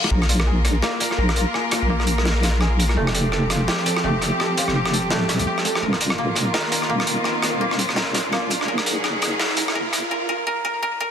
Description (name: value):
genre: half-time drum and bass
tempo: 168 BPM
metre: 4/4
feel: swing 59% on 16ths, half-time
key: unclear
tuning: A4 = 440 Hz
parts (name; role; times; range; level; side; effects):
- rich studio cello section; sustained chords; 0.0-10.1 s; Eb3 to Bb4; -25 LUFS; left 1 dB; none
- koto; arpeggios; 0.0-11.1 s; A3 to A5; -26 LUFS; right 2 dB; low-pass filter, tape echo
- crunchy breakbeat drum kit; drums; 0.0-10.0 s; hi-hat, rim click, snare drum; -24 LUFS; equal; high-pass filter on hats, soft clipping on snare, high-pass filter on snare, high-pass filter on room
- reverse cymbal and riser; sound effects; 0.0-10.1 s; none; -31 LUFS; equal; none
- deep soft wobble bass; bass; 0.1-10.0 s; D1 to C2; -22 LUFS; equal; chorus
room: light reverb, small room ambience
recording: dense, heavily limited modern master, high-pass filter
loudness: -18 LUFS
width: side -8 dB against mid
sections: 0.1-11.1 A section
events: build-up 0.1-11.1; riser 0.1-10.1; filter sweep on koto 0.1-11.1; filter sweep 0.1-11.1; break 10.1-11.1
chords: 0.1 Bb5; 3.0 F; 5.8 Ebsus2; 8.7 Gb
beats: | 0.11 0.47 0.82 1.18 | 1.54 1.90 2.25 2.61 | 2.97 3.33 3.68 4.04 | 4.40 4.75 5.11 5.47 | 5.83 6.18 6.54 6.90 | 7.25 7.61 7.97 8.32 | 8.68 9.04 9.40 9.75 | 10.11 10.47 10.82